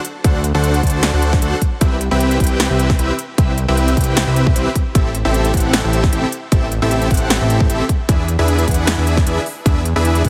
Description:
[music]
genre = future bass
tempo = 153 BPM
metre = 4/4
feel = swing 53% on 16ths, half-time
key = C lydian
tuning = A4 = 438 Hz
[part]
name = big-room dance drum kit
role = drums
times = 0.0-10.3 s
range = hi-hat, snare drum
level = -23 LUFS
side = equal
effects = none
[part]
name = dense compressed supersaw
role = riff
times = 0.2-10.3 s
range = C4 to A5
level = -21 LUFS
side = equal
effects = sidechain pumping, tape echo
[part]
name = fat analog bass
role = bass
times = 0.2-10.3 s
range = A1 to E2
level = -20 LUFS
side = equal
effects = sidechain pumping
[part]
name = electronic kick drum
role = drums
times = 0.2-10.3 s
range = none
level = -18 LUFS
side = equal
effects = none
[sound]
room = little or no reverb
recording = heavily compressed radio sound, multiband compression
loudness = -16 LUFS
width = mono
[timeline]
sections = 0.0-10.3 A section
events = none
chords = 0.0 D7; 1.8 Cmaj7; 5.0 Am7; 8.1 E7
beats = | 0.24 0.64 1.03 1.42 | 1.81 2.21 2.60 2.99 | 3.38 3.77 4.17 4.56 | 4.95 5.34 5.74 6.13 | 6.52 6.91 7.30 7.70 | 8.09 8.48 8.87 9.26 | 9.66 10.05

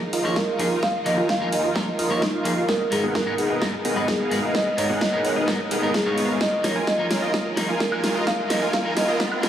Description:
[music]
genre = EDM, festival progressive house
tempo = 129 BPM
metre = 4/4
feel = straight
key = unclear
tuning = A4 = 438 Hz
[part]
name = folk marimba with soft mallets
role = melody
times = 0.0-9.4 s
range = Eb4 to F5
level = -26 LUFS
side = equal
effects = dub echo
[part]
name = clear studio string section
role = sustained chords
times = 0.0-9.5 s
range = Eb3 to Bb4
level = -34 LUFS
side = right 1 dB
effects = none
[part]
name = dense compressed supersaw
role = riff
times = 0.1-9.3 s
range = Cb4 to Ab5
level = -26 LUFS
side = right 1 dB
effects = sidechain pumping, low-pass filter, dub echo
[part]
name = wide detuned saw bass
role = bass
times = 0.1-9.5 s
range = Ab1 to Eb2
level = -33 LUFS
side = right 1 dB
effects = none
[part]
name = big-room dance drum kit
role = drums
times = 0.1-9.5 s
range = hi-hat, snare drum, woodblock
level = -27 LUFS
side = equal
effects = none
[part]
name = electric guitar at the edge of break-up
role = accompaniment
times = 0.2-9.5 s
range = Ab2 to Db5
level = -28 LUFS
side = left 1 dB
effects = sidechain pumping, dub echo
[part]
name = electronic kick drum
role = drums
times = 0.4-9.3 s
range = none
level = -33 LUFS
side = equal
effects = none
[part]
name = riser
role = sound effects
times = 7.5-9.5 s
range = none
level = -33 LUFS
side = right 1 dB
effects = none
[sound]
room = wet huge ambient reverb, RT60 3.7 s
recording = heavily compressed radio sound, multiband compression, high-pass filter, small room ambience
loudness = -20 LUFS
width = side -10 dB against mid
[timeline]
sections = 0.0-9.5 A section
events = build-up 0.0-9.5; drum fill 0.0-9.5; filter sweep on supersaw synth 0.0-9.5; riser 7.5-9.5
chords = 0.0 Bb5; 2.7 Abmadd9; 6.4 Ebsus2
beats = 0.36 | 0.83 1.29 1.76 2.22 | 2.69 3.15 3.62 4.08 | 4.55 5.01 5.48 5.94 | 6.41 6.87 7.34 7.80 | 8.27 8.73 9.20

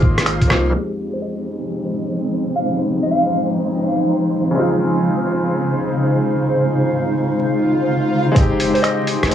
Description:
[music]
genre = future garage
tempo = 126 BPM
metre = 4/4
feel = swing 64% on 16ths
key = F minor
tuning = A4 = 440 Hz
[part]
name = bright upright piano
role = accompaniment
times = 0.0-9.3 s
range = F2 to G4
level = -23 LUFS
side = left 1 dB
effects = sidechain pumping, analog delay
[part]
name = granular cloud pad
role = sustained chords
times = 0.0-9.3 s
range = Db3 to F6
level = -19 LUFS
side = equal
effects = built-in reverb, sidechain pumping
[part]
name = soft 808-style bass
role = bass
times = 0.0-0.7, 8.4-9.3 s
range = F1 to C2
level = -22 LUFS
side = equal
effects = sidechain pumping
[part]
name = electronic kick drum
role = drums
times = 0.0-0.5, 8.4-8.5 s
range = none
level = -15 LUFS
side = equal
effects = none
[part]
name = lo-fi sampler-style drum kit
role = drums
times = 0.2-0.6, 8.4-9.3 s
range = finger snaps, hi-hat, rim click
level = -20 LUFS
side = equal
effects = low-pass filter on hats, low-pass filter on snare
[part]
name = flickering grainy texture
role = texture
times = 1.1-7.9 s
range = C4 to C5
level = -28 LUFS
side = right 1 dB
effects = built-in reverb
[part]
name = soft struck synth lead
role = melody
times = 1.1-3.5, 8.7-9.1 s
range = C5 to F5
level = -24 LUFS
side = equal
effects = chorus, analog delay
[part]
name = swell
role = sound effects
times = 7.6-8.4 s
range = none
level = -23 LUFS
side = right 2 dB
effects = none
[sound]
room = light reverb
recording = dry, gritty hardware recording, vinyl crackle, low-pass filter, small room ambience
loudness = -16 LUFS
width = side -10 dB against mid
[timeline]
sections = 0.7-8.4 A section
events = band accent 0.3; filter sweep on drum 0.7-8.4; filter sweep on ambient pad 0.7-8.4; filter sweep 0.7-8.4; swell 7.6-8.4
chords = 0.0 Ab6; 0.7 Fm9; 4.6 Dbmaj7; 8.4 Fm9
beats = 0.27 | 0.74 1.22 1.70 2.17 | 2.65 3.12 3.60 4.08 | 4.55 5.03 5.50 5.98 | 6.46 6.93 7.41 7.88 | 8.36 8.84 9.31

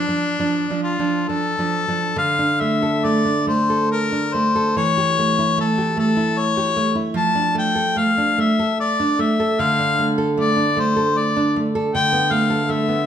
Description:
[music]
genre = romantic duo for harmonica and classical guitar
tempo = 65-79 BPM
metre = 3/4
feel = rubato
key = D minor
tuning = A4 = 439 Hz
[part]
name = mellow harmonica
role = melody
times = 0.0-13.1 s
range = D4 to A5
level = -20 LUFS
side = left 4 dB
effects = none
[part]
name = nylon-string guitar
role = accompaniment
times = 0.0-13.1 s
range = D3 to A4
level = -20 LUFS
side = right 2 dB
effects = none
[sound]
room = wet recital hall reverb, RT60 1.3 s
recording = recorded in a church or concert hall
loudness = -17 LUFS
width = side -9 dB against mid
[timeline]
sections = 0.0-2.2 A section; 2.2-13.1 B section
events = none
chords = 0.0 Dm; 2.2 D5; 4.8 A7/E; 7.2 Dm/F; 9.6 D5; 11.9 Dm69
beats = 0.38 1.27 | 2.15 3.02 3.90 | 4.76 5.57 6.36 | 7.15 7.97 8.79 | 9.59 10.37 11.16 | 11.94 12.70

